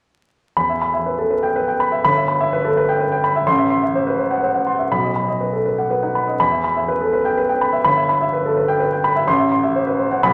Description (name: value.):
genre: classical, virtuoso piano study.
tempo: 125 BPM.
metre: 3/4.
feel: rubato.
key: E minor.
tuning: A4 = 442 Hz.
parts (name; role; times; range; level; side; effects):
warm grand piano; solo; 0.6-10.3 s; G1 to C6; -18 LUFS; equal; none.
room: wet recital hall reverb, RT60 1.9 s.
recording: vinyl crackle.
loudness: -18 LUFS.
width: mono.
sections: 0.6-10.3 A section.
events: none.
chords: 0.6 Em; 2.0 Em/G; 3.5 F#m7b5/A; 4.9 B; 6.4 Em; 7.9 Em/G; 9.3 F#m7b5/A.